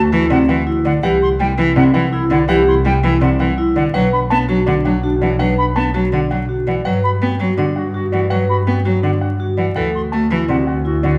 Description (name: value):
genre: classical, minimalist pattern music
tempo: 165 BPM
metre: 4/4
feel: straight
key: G major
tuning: A4 = 444 Hz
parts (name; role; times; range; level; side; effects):
- warm grand piano; melody; 0.0-11.2 s; D5 to A5; -28 LUFS; equal; none
- mellow clarinet; second line; 0.0-11.2 s; D4 to F#4; -28 LUFS; equal; none
- clear cello; accompaniment; 0.0-11.2 s; C3 to B3; -21 LUFS; equal; none
- clear studio double bass section; bass; 0.0-11.2 s; B1 to G2; -22 LUFS; equal; none
- vibraphone with medium hard mallets; arpeggios; 0.1-11.1 s; C4 to B4; -22 LUFS; equal; none
- silver concert flute; arpeggios; 0.3-11.1 s; F#5 to C6; -26 LUFS; equal; none
room: moderate recital hall reverb, RT60 1.4 s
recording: vinyl crackle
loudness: -16 LUFS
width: mono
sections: 0.0-11.2 A section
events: none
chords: 0.0 D7; 1.0 Cadd9; 3.9 Bm; 6.9 Gmaj7; 9.8 D7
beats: 0.31 0.67 | 1.03 1.40 1.76 2.12 | 2.49 2.85 3.21 3.58 | 3.94 4.31 4.67 5.03 | 5.40 5.76 6.12 6.49 | 6.85 7.21 7.58 7.94 | 8.31 8.67 9.03 9.40 | 9.76 10.12 10.49 10.85